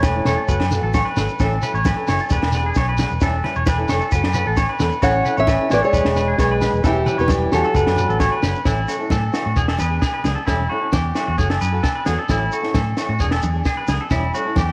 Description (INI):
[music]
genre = highlife guitar band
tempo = 132 BPM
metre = 4/4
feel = straight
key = A major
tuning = A4 = 435 Hz
[part]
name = fingerpicked steel-string acoustic guitar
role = melody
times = 0.0-0.7, 5.0-8.4 s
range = E4 to F#5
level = -22 LUFS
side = equal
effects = slapback echo
[part]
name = mellow French horn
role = second line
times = 0.0-0.7, 5.0-8.4 s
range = E3 to C#4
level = -30 LUFS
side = equal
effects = none
[part]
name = clean electric guitar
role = arpeggios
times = 0.0-14.7 s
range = E4 to C#5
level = -26 LUFS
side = equal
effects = lush chorus, slapback echo
[part]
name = fingered electric bass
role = bass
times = 0.0-14.7 s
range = E1 to A2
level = -24 LUFS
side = equal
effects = none
[part]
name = compact cocktail drum kit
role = drums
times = 0.0-14.7 s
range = kick drum, snare drum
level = -25 LUFS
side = equal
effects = none
[part]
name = agogo bells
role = percussion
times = 0.0-14.7 s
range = none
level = -29 LUFS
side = equal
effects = none
[part]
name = congas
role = percussion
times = 0.0-14.7 s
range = none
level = -31 LUFS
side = equal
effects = none
[part]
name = shekere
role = percussion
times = 0.0-14.7 s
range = none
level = -33 LUFS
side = equal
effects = none
[part]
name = flamenco guitar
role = accompaniment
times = 0.1-14.6 s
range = F#3 to A4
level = -31 LUFS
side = equal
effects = none
[sound]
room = light reverb, small room ambience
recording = none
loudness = -19 LUFS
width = mono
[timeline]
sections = 0.0-8.7 A section; 8.7-14.7 B section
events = none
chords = 0.5 F#madd11; 1.4 A6; 2.3 E7; 3.2 A7/E; 4.1 F#madd11; 5.0 A6; 5.9 E7; 6.8 A7/E; 7.8 D6/F#; 8.7 A6; 9.6 E7; 10.5 A7/E; 11.4 F#madd9; 12.3 A6; 13.2 E7; 14.1 A7/E